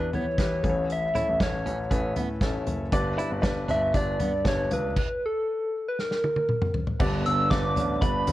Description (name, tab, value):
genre	piano-driven pop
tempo	118 BPM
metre	4/4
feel	straight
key	unclear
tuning	A4 = 438 Hz
part	soft struck synth lead	melody	0.0-8.3 s	A4 to E6	-27 LUFS	equal	chorus, tremolo
part	felt-muted upright piano	accompaniment	0.0-8.3 s	G2 to D5	-31 LUFS	left 1 dB	none
part	clean electric guitar	riff	0.0-4.3 s	B3 to E4	-35 LUFS	right 3 dB	none
part	dark grand piano	bass	0.0-8.3 s	F#1 to E3	-30 LUFS	equal	none
part	unplugged drum kit	drums	0.1-8.3 s	crash cymbal, hi-hat, kick drum, snare drum, toms	-28 LUFS	equal	none
part	dark French horn section	second line	7.0-8.3 s	D3 to D4	-34 LUFS	right 5 dB	none
room	light reverb, studio reverb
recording	worn, warbling old tape, cassette tape, warbly pitch drift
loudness	-24 LUFS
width	side -15 dB against mid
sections	0.0-7.0 A section; 7.0-8.3 B section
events	drum fill 6.0-7.0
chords	0.0 Em; 0.6 A; 2.9 G; 5.0 N.C.; 7.0 G